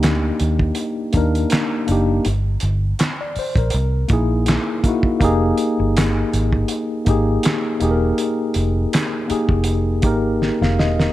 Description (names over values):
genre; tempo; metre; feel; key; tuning
R&B, neo-soul; 81 BPM; 4/4; swing 55% on 16ths; F dorian; A4 = 440 Hz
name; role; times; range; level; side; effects
mellow tine electric piano; accompaniment; 0.0-11.1 s; Bb3 to F5; -20 LUFS; left 1 dB; medium stereo tremolo
vintage muted fingered electric bass; bass; 0.0-11.1 s; E1 to Eb2; -20 LUFS; equal; none
cloth-damped thuddy drum kit; drums; 0.0-11.1 s; handclaps, hi-hat, kick drum, snare drum; -20 LUFS; right 1 dB; none
room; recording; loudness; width
little or no reverb; none; -16 LUFS; side -14 dB against mid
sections
0.0-11.1 A section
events
drum fill 10.4-11.1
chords
0.0 Cm7 (rootless); 2.2 Gm; 3.7 C7alt; 5.2 Fm11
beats
0.02 0.76 1.50 | 2.24 2.98 3.73 4.47 | 5.21 5.95 6.69 7.43 | 8.17 8.91 9.65 10.39